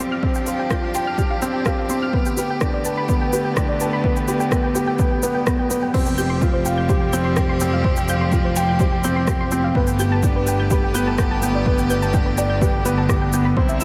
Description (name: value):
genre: piano and strings electronica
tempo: 126 BPM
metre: 4/4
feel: straight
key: unclear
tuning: A4 = 440 Hz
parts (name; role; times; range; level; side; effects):
- clear string quartet; sustained chords; 0.0-13.8 s; D3 to G4; -29 LUFS; equal; sidechain pumping, shimmer reverb
- soft round pluck; arpeggios; 0.0-13.8 s; B4 to G6; -29 LUFS; equal; chorus, cassette tape, sidechain pumping, delay, shimmer reverb
- felt-muted upright piano; riff; 0.0-13.8 s; B3 to G5; -25 LUFS; equal; delay, shimmer reverb
- minimal click drum kit; drums; 0.0-13.8 s; crash cymbal, rim click, shaker; -30 LUFS; equal; overdrive
- electronic kick drum; drums; 0.2-13.7 s; none; -23 LUFS; equal; overdrive
- clear chamber double bass section; bass; 5.9-13.8 s; F1 to C2; -25 LUFS; equal; sidechain pumping
room: moderate lush hall reverb, RT60 1.8 s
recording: none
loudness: -20 LUFS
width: mono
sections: 0.0-5.9 A section; 5.9-13.8 B section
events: build-up 0.0-5.9; drop 5.9-13.8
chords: 0.0 Fsus2; 2.1 Gadd9; 5.9 Fsus2; 9.8 Gadd9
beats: | 0.23 0.71 1.18 1.66 | 2.14 2.61 3.09 3.56 | 4.04 4.52 4.99 5.47 | 5.95 6.42 6.90 7.37 | 7.85 8.33 8.80 9.28 | 9.76 10.23 10.71 11.18 | 11.66 12.14 12.61 13.09 | 13.56